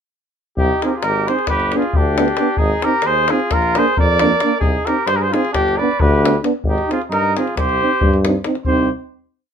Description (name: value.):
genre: balkan folk, Balkan brass band.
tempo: 267 BPM (eighths).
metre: 9/8.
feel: straight.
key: C minor.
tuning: A4 = 436 Hz.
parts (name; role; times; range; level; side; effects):
warm flugelhorn; melody; 0.6-8.9 s; G4 to D5; -18 LUFS; equal; none.
mellow trumpet; second line; 0.6-8.9 s; D4 to B4; -24 LUFS; right 4 dB; none.
warm tuba; bass; 0.6-8.9 s; G1 to G2; -20 LUFS; equal; none.
davul; percussion; 0.6-8.9 s; none; -21 LUFS; left 2 dB; none.
mellow euphonium; accompaniment; 0.8-8.9 s; D4 to Eb4; -23 LUFS; left 3 dB; none.
warm euphonium; accompaniment; 0.8-8.9 s; Bb3 to C4; -23 LUFS; right 6 dB; none.
room: moderate studio reverb, RT60 0.6 s.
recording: minimal, uncompressed stereo recording.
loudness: -14 LUFS.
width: side -8 dB against mid.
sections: 0.6-8.7 A section; 8.7-9.5 final chord.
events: none.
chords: 0.6 Cm; 1.5 G; 2.6 Ab; 3.5 Bb; 4.6 Cm; 5.5 G; 6.6 Ab; 7.5 Cm.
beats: | 0.57 0.79 1.02 1.24 1.47 1.69 1.91 2.14 2.36 | 2.59 2.81 3.04 3.26 3.49 3.71 3.94 4.16 4.39 | 4.61 4.84 5.07 5.29 5.52 5.74 5.97 6.19 6.42 | 6.64 6.87 7.09 7.32 7.54 7.77 7.99 8.22 8.44 | 8.67 8.89.